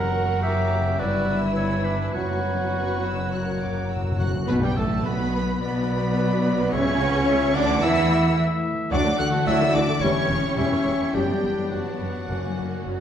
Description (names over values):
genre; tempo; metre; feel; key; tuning
classical, dramatic, fast romantic movement for symphony orchestra; 106 BPM; 4/4; straight; B minor; A4 = 440 Hz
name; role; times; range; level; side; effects
warm symphonic violin section; melody; 0.0-13.0 s; F#5 to F#6; -34 LUFS; left 2 dB; none
clear clarinet; second line; 0.0-13.0 s; B4 to F#5; -30 LUFS; equal; none
hollow small flute group; second line; 0.0-13.0 s; F#4 to B5; -32 LUFS; right 1 dB; none
warm oboe; second line; 0.0-13.0 s; D4 to F#5; -31 LUFS; right 1 dB; none
warm symphonic violin section; second line; 0.0-13.0 s; G3 to B4; -32 LUFS; left 2 dB; none
mellow bassoon; accompaniment; 0.0-4.2 s; E3 to F#3; -32 LUFS; right 1 dB; none
rich symphonic viola section; accompaniment; 0.0-13.0 s; C#3 to A#4; -31 LUFS; right 1 dB; none
mellow French horn section; sustained chords; 0.0-13.0 s; F#3 to F#4; -29 LUFS; left 2 dB; none
concert harp; arpeggios; 0.0-13.0 s; F#2 to E5; -31 LUFS; left 5 dB; none
rich symphonic cello section; bass; 0.0-12.9 s; D2 to E3; -29 LUFS; right 2 dB; none
rich symphonic double bass section; bass; 0.0-12.9 s; E1 to E2; -28 LUFS; right 2 dB; none
timpani; percussion; 0.0-5.3, 12.3-13.0 s; F#2 to B2; -32 LUFS; left 1 dB; none
room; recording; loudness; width
wet recital hall reverb, RT60 1.3 s; dark, warm production; -20 LUFS; side -9 dB against mid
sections
0.0-4.5 A section; 4.5-13.0 B section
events
timpani fill 3.3-4.5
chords
0.0 F#; 1.0 Em/G; 2.1 F#sus4; 3.3 F#; 4.5 Bm; 6.7 A/C#; 8.9 D; 10.0 C#dim/E; 11.1 Bm/F#; 12.3 F#